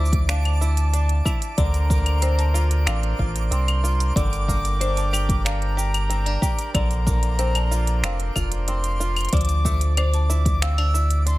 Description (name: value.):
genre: folktronica.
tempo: 93 BPM.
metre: 4/4.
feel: straight.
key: unclear.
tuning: A4 = 440 Hz.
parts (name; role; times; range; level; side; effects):
wooden flute; melody; 0.0-11.4 s; A5 to E6; -30 LUFS; left 2 dB; ping-pong delay.
hand-pumped harmonium; sustained chords; 0.0-11.4 s; D4 to G5; -34 LUFS; right 4 dB; none.
bluegrass banjo; arpeggios; 0.0-11.4 s; D3 to G4; -33 LUFS; equal; vintage 12-bit sampler grit.
warm sub bass; bass; 0.0-11.4 s; F1 to D2; -21 LUFS; equal; none.
twinkling granular texture; texture; 0.0-11.4 s; D6; -37 LUFS; right 3 dB; built-in reverb.
electronic kick drum; drums; 0.1-10.6 s; none; -23 LUFS; equal; none.
organic electronic drum kit; drums; 0.1-11.4 s; claves, finger snaps, hi-hat, shaker; -28 LUFS; right 1 dB; none.
buzzing marimba with medium hard mallets; second line; 0.3-10.8 s; C5 to A5; -34 LUFS; left 4 dB; ping-pong delay.
room: little or no reverb.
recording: none.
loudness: -19 LUFS.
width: side -18 dB against mid.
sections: 0.0-11.4 A section.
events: none.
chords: 0.0 Dmadd9; 1.6 Bbadd9/D; 4.2 Gm; 6.7 Bbadd9; 9.3 Dmadd9.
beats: 0.29 0.94 | 1.58 2.23 2.87 3.52 | 4.16 4.81 5.45 6.10 | 6.74 7.39 8.04 8.68 | 9.32 9.97 10.62 11.26.